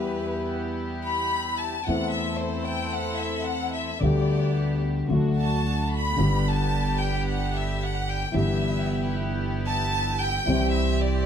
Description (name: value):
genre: tango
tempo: 112 BPM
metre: 4/4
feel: rubato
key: G major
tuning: A4 = 439 Hz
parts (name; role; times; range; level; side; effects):
- rich chamber violin section; second line; 0.0-11.3 s; B4 to B5; -29 LUFS; left 1 dB; none
- warm concert grand piano; accompaniment; 0.0-11.3 s; G1 to A4; -26 LUFS; left 2 dB; none
- warm studio string section; stabs; 0.0-11.3 s; A3 to A4; -33 LUFS; equal; none
- upright bass; bass; 0.0-11.3 s; G1 to E2; -30 LUFS; right 3 dB; none
room: moderate studio reverb, RT60 0.7 s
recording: none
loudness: -23 LUFS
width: side -8 dB against mid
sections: 0.0-11.3 A section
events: violin section solo 0.0-11.3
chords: 0.0 Em; 1.9 Am/E; 4.0 G/D; 5.1 D; 6.2 G; 8.3 Em/G; 10.5 C